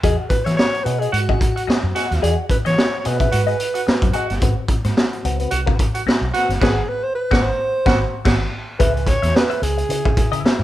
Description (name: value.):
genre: funk.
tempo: 110 BPM.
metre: 4/4.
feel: swing 56% on 16ths.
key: unclear.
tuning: A4 = 441 Hz.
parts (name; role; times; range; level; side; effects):
breathy alto saxophone; melody; 0.0-10.4 s; F#4 to C#5; -22 LUFS; right 1 dB; none.
clean electric guitar; accompaniment; 0.0-10.6 s; B#3 to E5; -26 LUFS; left 6 dB; wah.
vintage muted fingered electric bass; bass; 0.0-10.6 s; G1 to E3; -22 LUFS; equal; none.
raw garage drum kit; drums; 0.0-10.6 s; crash cymbal, hi-hat, kick drum, snare drum; -19 LUFS; equal; none.
growling tenor saxophone; second line; 1.1-10.6 s; E4 to F#4; -26 LUFS; right 3 dB; none.
room: light reverb.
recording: band playing live in one room.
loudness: -16 LUFS.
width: side -14 dB against mid.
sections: 0.0-8.8 A section; 8.8-10.6 B section.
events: band accent 6.6-8.8.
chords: 0.0 Emaj9; 4.4 G#7#9; 8.8 C#m7.